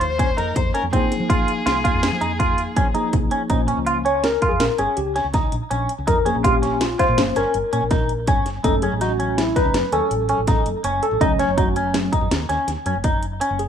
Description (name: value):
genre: progressive instrumental, band music in an uneven meter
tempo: 163 BPM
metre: 7/4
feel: straight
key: unclear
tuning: A4 = 440 Hz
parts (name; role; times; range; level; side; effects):
- warm violin; melody; 0.0-3.1 s; Ab4 to C5; -26 LUFS; left 6 dB; none
- bright tine electric piano; accompaniment; 0.0-13.7 s; F3 to Eb5; -22 LUFS; left 1 dB; fast stereo tremolo
- clean electric guitar; arpeggios; 0.0-13.6 s; C4 to F4; -22 LUFS; right 1 dB; analog chorus, digital delay
- woody fretless electric bass; bass; 0.0-13.7 s; Gb1 to F3; -27 LUFS; equal; wide subtle chorus
- house drum kit; drums; 0.0-13.7 s; hi-hat, kick drum, snare drum; -22 LUFS; equal; none
room: light reverb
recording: rough home demo mix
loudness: -17 LUFS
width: side -8 dB against mid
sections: 0.0-3.5 A section; 3.5-13.7 B section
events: break 3.3; tine electric piano solo 3.5-13.7; kick and snare drop out 13.4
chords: 0.0 Fm; 3.5 Bbm; 8.6 Gbm